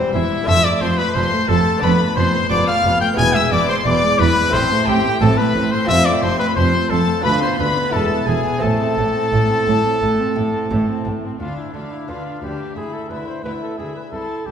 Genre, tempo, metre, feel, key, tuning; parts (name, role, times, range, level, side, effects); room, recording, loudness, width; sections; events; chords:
classical, baroque-style concerto movement with solo episodes; 88 BPM; 4/4; straight; A minor; A4 = 440 Hz
clear trumpet; melody; 0.0-14.5 s; C4 to G#5; -20 LUFS; left 1 dB
warm chamber violin section; melody; 0.0-14.5 s; C5 to G#6; -25 LUFS; left 5 dB
rich chamber violin section; second line; 0.0-14.5 s; C5 to G#6; -26 LUFS; left 2 dB
lute; accompaniment; 0.0-14.1 s; D2 to B4; -27 LUFS; equal
warm chamber viola section; accompaniment; 0.0-14.5 s; E3 to E4; -24 LUFS; equal
dark chamber cello section; bass; 0.1-14.5 s; C2 to A2; -23 LUFS; right 2 dB
warm studio double bass section; bass; 0.1-11.1 s; E1 to D2; -23 LUFS; right 2 dB
wet recital hall reverb, RT60 1.6 s; heard from further back in the room; -15 LUFS; side -8 dB against mid
0.0-11.4 A section; 11.4-14.5 B section
0.5 Dm/F; 1.8 Bm7b5/F; 3.2 E; 4.5 Am; 5.9 F; 7.2 Bdim/D; 7.9 E; 8.6 Am; 11.4 Bdim/D; 12.8 E5/D